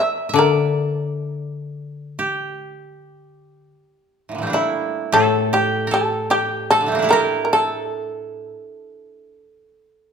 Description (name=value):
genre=japanese traditional, Japanese chamber music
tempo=50 BPM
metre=4/4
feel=rubato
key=A in sen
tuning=A4 = 438 Hz
part: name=shamisen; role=melody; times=0.0-10.1 s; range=E4 to E5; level=-20 LUFS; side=equal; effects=none
part: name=koto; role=second line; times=0.0-10.1 s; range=A2 to E5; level=-22 LUFS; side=right 4 dB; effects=none
part: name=koto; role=accompaniment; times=0.3-8.5 s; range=A2 to D3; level=-21 LUFS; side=left 6 dB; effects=none
room=wet recital hall reverb, RT60 1.5 s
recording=minimal, uncompressed stereo recording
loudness=-17 LUFS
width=side -6 dB against mid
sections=0.0-10.1 A section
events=none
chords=none